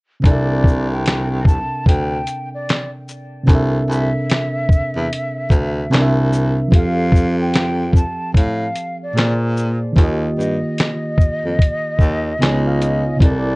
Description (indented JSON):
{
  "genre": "lo-fi hip hop",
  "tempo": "74 BPM",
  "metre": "4/4",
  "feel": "swing 65% on 16ths",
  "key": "unclear",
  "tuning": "A4 = 439 Hz",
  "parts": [
    { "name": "reed electric piano", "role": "accompaniment", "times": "0.2-13.6 s", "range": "Bb2 to Ab5", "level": "-20 LUFS", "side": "right 1 dB", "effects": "low-pass filter" },
    { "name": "warm baritone saxophone", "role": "bass", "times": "0.2-13.6 s", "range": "C2 to Bb2", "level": "-21 LUFS", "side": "equal", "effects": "none" },
    { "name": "dusty soul sampler-style drum kit", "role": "drums", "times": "0.2-13.5 s", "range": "handclaps, hi-hat, kick drum, shaker, snare drum", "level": "-14 LUFS", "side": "equal", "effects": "none" },
    { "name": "breathy mellow silver concert flute", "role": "melody", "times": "0.3-13.6 s", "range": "D5 to A5", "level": "-25 LUFS", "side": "equal", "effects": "low-pass filter, analog delay" }
  ],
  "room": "light reverb",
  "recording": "cassette tape",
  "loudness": "-15 LUFS",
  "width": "side -26 dB against mid",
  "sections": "0.2-13.6 A section",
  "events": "reed electric piano fill 12.0-13.2",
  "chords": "0.2 C13; 5.9 C7; 6.7 F; 9.2 Bb7; 10.0 Eb; 12.4 Db9"
}